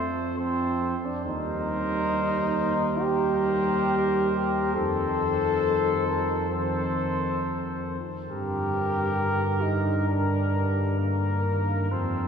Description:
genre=classical, brass quintet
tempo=68 BPM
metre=4/4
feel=straight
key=unclear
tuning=A4 = 439 Hz
part: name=warm trumpet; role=melody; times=0.0-12.3 s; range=Bb4 to C5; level=-32 LUFS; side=left 3 dB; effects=none
part: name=warm trumpet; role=second line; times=0.0-12.3 s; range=A4 to Bb4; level=-35 LUFS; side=right 3 dB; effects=none
part: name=clear French horn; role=accompaniment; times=0.0-12.3 s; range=Bb3 to C5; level=-28 LUFS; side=left 2 dB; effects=none
part: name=mellow euphonium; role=accompaniment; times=0.0-12.3 s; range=D3 to G3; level=-33 LUFS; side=right 2 dB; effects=none
part: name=mellow bass trombone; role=bass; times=0.0-12.3 s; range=Eb2 to G2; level=-28 LUFS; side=right 1 dB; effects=none
room=wet cathedral reverb, RT60 6.0 s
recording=heard from further back in the room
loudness=-23 LUFS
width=side -7 dB against mid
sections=0.0-12.3 A section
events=none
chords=0.0 F; 1.3 Cm7/Eb; 4.8 F7; 8.3 Gm

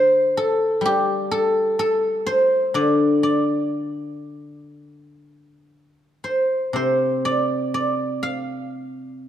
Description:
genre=chinese traditional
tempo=62 BPM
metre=4/4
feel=rubato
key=D yu mode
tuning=A4 = 442 Hz
part: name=guzheng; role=solo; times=0.0-9.3 s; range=C3 to F5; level=-19 LUFS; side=equal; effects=none
room=moderate concert hall reverb, RT60 2.0 s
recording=dark, warm production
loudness=-18 LUFS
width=side -10 dB against mid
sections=0.0-9.3 A section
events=none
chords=none

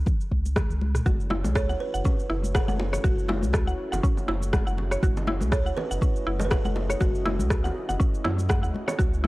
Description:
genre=afro house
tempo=121 BPM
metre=4/4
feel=swing 56% on 16ths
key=F# dorian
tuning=A4 = 440 Hz
part: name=warm sub bass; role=bass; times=0.0-9.3 s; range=F#1 to F#2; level=-28 LUFS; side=equal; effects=tube saturation, sidechain pumping
part: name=afro-pop drum kit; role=drums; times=0.1-9.2 s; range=rim click, shaker, toms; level=-32 LUFS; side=equal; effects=none
part: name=electronic kick drum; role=drums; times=0.1-9.1 s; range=none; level=-25 LUFS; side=equal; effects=none
part: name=congas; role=percussion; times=0.1-9.3 s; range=none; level=-34 LUFS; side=left 3 dB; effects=none
part: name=warm analog pad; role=sustained chords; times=1.1-9.3 s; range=A3 to D#5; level=-38 LUFS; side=right 1 dB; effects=chorus, sidechain pumping
part: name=mallet-like synth pluck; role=arpeggios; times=1.1-9.3 s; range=C#4 to F#5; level=-32 LUFS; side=equal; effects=chorus, sidechain pumping, analog delay
part: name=bongos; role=percussion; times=1.1-9.3 s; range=none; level=-35 LUFS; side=right 1 dB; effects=none
part: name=buzzing kalimba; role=melody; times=1.6-8.0 s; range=F#4 to C#5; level=-34 LUFS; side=right 1 dB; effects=analog delay
room=digital ambience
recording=dry, gritty hardware recording, cassette tape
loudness=-23 LUFS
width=side -20 dB against mid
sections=0.0-9.3 A section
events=drum fill 0.3-1.1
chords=0.0 C#5; 1.1 F#m7

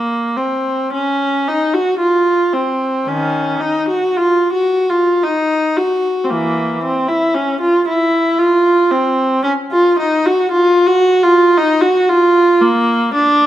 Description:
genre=classical, baroque-style suite movement for unaccompanied viola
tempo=56 BPM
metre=3/4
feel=rubato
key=unclear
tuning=A4 = 440 Hz
part: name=rich viola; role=solo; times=0.0-13.5 s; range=Eb3 to Gb4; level=-12 LUFS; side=equal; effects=none
room=moderate recital hall reverb, RT60 1.4 s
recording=none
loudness=-12 LUFS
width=side -12 dB against mid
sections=0.0-13.5 A section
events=none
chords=none

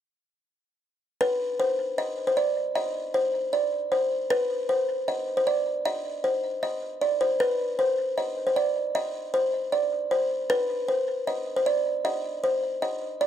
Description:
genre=hip hop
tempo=155 BPM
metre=4/4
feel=half-time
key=C harmonic minor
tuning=A4 = 440 Hz
part: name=buzzing kalimba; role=melody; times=1.2-13.3 s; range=B4 to Eb5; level=-24 LUFS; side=equal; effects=none
room=light reverb, small room ambience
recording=dry, gritty hardware recording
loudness=-24 LUFS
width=side -10 dB against mid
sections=1.2-13.3 A section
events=none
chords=none

